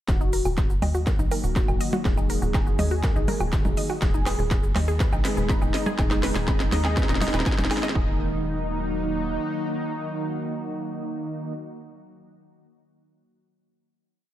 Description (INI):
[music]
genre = melodic techno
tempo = 122 BPM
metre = 4/4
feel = straight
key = Eb minor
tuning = A4 = 440 Hz
[part]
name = fat analog lead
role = melody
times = 0.1-11.5 s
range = Eb4 to Ab4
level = -32 LUFS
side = equal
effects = ensemble chorus, sidechain pumping, digital delay
[part]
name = evolving wavetable pad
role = sustained chords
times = 0.5-11.5 s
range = Eb3 to Bb4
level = -35 LUFS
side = left 2 dB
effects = chorus, built-in reverb, sidechain pumping
[part]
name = wide unison pluck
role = arpeggios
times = 0.1-8.2 s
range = Eb4 to Cb6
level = -32 LUFS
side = equal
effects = sidechain pumping, digital delay
[part]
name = tight sequencer bass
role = bass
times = 0.1-9.4 s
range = Eb1 to Eb2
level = -28 LUFS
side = equal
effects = sidechain pumping
[part]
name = electronic kick drum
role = drums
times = 0.1-8.1 s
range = none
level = -24 LUFS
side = equal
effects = none
[part]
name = techno drum kit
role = drums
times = 0.1-8.0 s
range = hi-hat, percussion blips, shaker, snare drum, woodblock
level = -29 LUFS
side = right 1 dB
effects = none
[part]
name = analog synth brass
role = stabs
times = 1.3-11.5 s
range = Eb3 to Ab4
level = -33 LUFS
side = right 2 dB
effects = chorus, tremolo, cassette tape, sidechain pumping, digital delay
[sound]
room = light reverb, digital ambience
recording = dark, warm production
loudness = -22 LUFS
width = side -13 dB against mid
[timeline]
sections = 0.1-8.0 build; 8.0-11.9 final chord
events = build-up 0.1-8.0; drum fill 0.1-8.0; filter sweep on synth arpeggio sound 0.1-8.0; filter sweep on analog synth lead 0.1-8.0; filter sweep on analog polysynth 0.1-8.0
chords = 0.1 Ebm; 4.0 Abm/Eb; 8.0 Ebm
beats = | 0.09 0.58 1.07 1.56 | 2.05 2.54 3.04 3.53 | 4.02 4.51 5.00 5.50 | 5.99 6.48 6.97 7.46 | 7.95 8.45 8.94 9.43 | 9.92 10.41 10.90 11.40